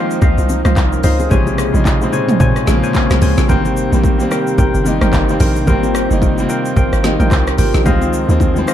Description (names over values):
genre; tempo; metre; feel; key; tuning
amapiano; 110 BPM; 4/4; swing 58% on 16ths; Ab major; A4 = 440 Hz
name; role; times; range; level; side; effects
warm concert grand piano; accompaniment; 0.0-8.7 s; C3 to C5; -18 LUFS; equal; none
hollow soft pad; sustained chords; 0.0-8.7 s; Bb2 to C5; -24 LUFS; left 2 dB; chorus
percussive organ stab; stabs; 0.0-8.7 s; Bb4 to Ab5; -22 LUFS; left 1 dB; chorus, ping-pong delay
deep house drum kit; drums; 0.1-8.7 s; handclaps, hi-hat, kick drum, rim click, shaker, snare drum, toms; -17 LUFS; equal; none
hollow log drum bass; bass; 0.2-8.6 s; G1 to Bb2; -16 LUFS; equal; none
bongos and congas; percussion; 0.2-8.7 s; none; -22 LUFS; left 2 dB; none
room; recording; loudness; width
light reverb; dark, warm production; -12 LUFS; side -11 dB against mid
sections
0.0-8.7 A section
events
none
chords
0.0 Dbmaj9; 1.3 Bbm9; 3.5 Abmaj9; 7.9 Dbmaj9